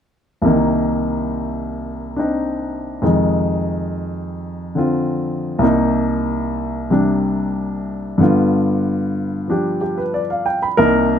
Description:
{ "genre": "solo jazz", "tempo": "93 BPM", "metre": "4/4", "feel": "swing 69% on 8ths", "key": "C minor", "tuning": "A4 = 440 Hz", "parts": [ { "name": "warm baby grand piano", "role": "solo", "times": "0.4-11.2 s", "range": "C2 to B5", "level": "-16 LUFS", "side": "equal", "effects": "none" } ], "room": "moderate small room reverb, RT60 0.5 s", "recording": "close, detailed microphones", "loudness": "-17 LUFS", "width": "side -8 dB against mid", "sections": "0.4-10.8 A section", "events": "none", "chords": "0.4 Cm7; 3.0 Fm7; 5.6 Cm7; 8.2 G7" }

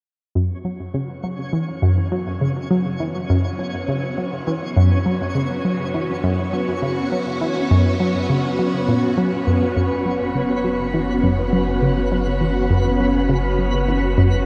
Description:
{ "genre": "ambient, sequencer-driven space music", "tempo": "102 BPM", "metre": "4/4", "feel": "straight", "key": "unclear", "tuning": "A4 = 438 Hz", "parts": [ { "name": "phased string machine", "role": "sustained chords", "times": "0.3-14.5 s", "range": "B3 to F#4", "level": "-25 LUFS", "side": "equal", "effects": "ensemble chorus, phaser" }, { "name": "twinkling granular texture", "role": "texture", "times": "0.6-14.5 s", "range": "B3 to C#5", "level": "-31 LUFS", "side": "equal", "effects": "built-in reverb" }, { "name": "analog pluck", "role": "riff", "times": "0.4-14.3 s", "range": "F#2 to F#3", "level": "-22 LUFS", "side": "equal", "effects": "chorus, phaser, delay" }, { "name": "warm sub bass", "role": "bass", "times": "9.8-14.5 s", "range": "F#1", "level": "-27 LUFS", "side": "equal", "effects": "none" } ], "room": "wet shimmer reverb, RT60 8.8 s", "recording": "dark, warm production, nothing above 11.0 kHz", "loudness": "-20 LUFS", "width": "mono", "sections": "0.4-9.8 A section; 9.8-14.5 B section", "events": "fade-in on string machine 0.4-9.8; filter sweep on synth arpeggio sound 0.4-9.8, 9.8-14.5", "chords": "0.4 F#sus4" }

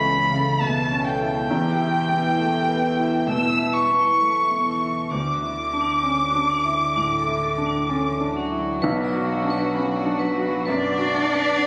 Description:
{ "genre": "neoclassical piano and strings", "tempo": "66 BPM", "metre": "4/4", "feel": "rubato", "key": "B minor", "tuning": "A4 = 440 Hz", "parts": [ { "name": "warm violin", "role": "melody", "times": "0.0-11.7 s", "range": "F#4 to E6", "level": "-25 LUFS", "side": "equal", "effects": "none" }, { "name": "rich cello", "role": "second line", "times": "0.0-11.7 s", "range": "D3 to D4", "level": "-32 LUFS", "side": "equal", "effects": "none" }, { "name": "felt-muted upright piano", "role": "accompaniment", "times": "0.0-11.7 s", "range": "B1 to F#4", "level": "-27 LUFS", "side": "equal", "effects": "none" }, { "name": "vibraphone with hard mallets", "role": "arpeggios", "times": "0.0-11.7 s", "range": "D4 to B5", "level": "-33 LUFS", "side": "equal", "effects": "slapback echo" }, { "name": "sub bass with octave", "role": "bass", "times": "0.0-11.7 s", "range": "E1 to D2", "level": "-41 LUFS", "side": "equal", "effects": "none" } ], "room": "wet recital hall reverb, RT60 1.8 s", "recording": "recorded on a phone in the room, studio reverb, compression", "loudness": "-22 LUFS", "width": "mono", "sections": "0.0-8.8 A section; 8.8-11.7 B section", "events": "none", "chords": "0.0 A/C#; 1.5 Em; 5.1 Dadd9; 8.8 Bm" }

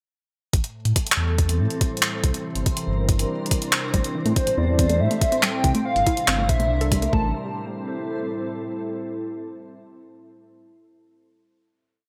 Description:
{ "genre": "IDM", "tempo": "141 BPM", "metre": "4/4", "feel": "straight", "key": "A phrygian", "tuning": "A4 = 441 Hz", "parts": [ { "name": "glassy FM pad", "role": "sustained chords", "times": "0.5-9.0 s", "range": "A2 to Bb4", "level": "-32 LUFS", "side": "equal", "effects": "ensemble chorus, built-in reverb" }, { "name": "dark detuned saw bass", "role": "bass", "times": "0.5-7.3 s", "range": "G1 to A2", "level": "-25 LUFS", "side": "equal", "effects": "none" }, { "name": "electronic kick drum", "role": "drums", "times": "0.5-7.2 s", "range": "none", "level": "-25 LUFS", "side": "equal", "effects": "overdrive" }, { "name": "jungle sampler-style drum kit", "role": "drums", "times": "0.5-7.1 s", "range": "handclaps, hi-hat", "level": "-26 LUFS", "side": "equal", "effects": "none" }, { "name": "backwards swelling texture", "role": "texture", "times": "1.5-7.4 s", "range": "C4 to C5", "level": "-37 LUFS", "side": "equal", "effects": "built-in reverb" }, { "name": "warbly dusty pluck", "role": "arpeggios", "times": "3.9-7.3 s", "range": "A2 to A4", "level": "-31 LUFS", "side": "equal", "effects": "chorus, tape echo" }, { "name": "warbly nostalgic lead", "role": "melody", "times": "4.4-7.3 s", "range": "C5 to A5", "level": "-27 LUFS", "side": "equal", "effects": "analog chorus, tape echo" } ], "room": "moderate spring reverb, RT60 2.0 s", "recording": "echo-heavy mix", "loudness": "-23 LUFS", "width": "mono", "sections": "0.5-7.3 groove; 7.3-9.0 final chord", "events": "none", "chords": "0.5 Am7; 2.2 C7; 3.9 Am7; 5.6 C7; 7.1 Am7" }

